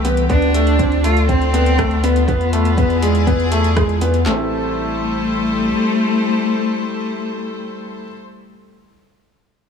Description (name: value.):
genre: piano and strings electronica.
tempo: 121 BPM.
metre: 4/4.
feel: straight.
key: A minor.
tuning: A4 = 441 Hz.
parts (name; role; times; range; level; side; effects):
rich studio string section; sustained chords; 0.0-8.2 s; E3 to D5; -24 LUFS; left 1 dB; sidechain pumping.
felt-muted upright piano; riff; 0.0-8.1 s; G#3 to A4; -21 LUFS; equal; tape echo.
warm sub bass; bass; 0.0-5.7 s; A1 to E2; -19 LUFS; equal; sidechain pumping.
deep house drum kit; drums; 0.0-4.2 s; hi-hat, rim click; -29 LUFS; equal; overdrive.
rich cello; melody; 0.3-8.0 s; A3 to F4; -20 LUFS; left 1 dB; tape echo.
deep house drum kit; drums; 0.3-4.4 s; handclaps, kick drum, snare drum; -20 LUFS; equal; overdrive.
room: light reverb, small room ambience.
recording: none.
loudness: -14 LUFS.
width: side -6 dB against mid.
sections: 0.0-4.3 A section; 4.3-8.2 B section.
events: drop 0.0-4.3.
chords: 0.3 Dm7; 2.3 E7b9; 4.3 Am7.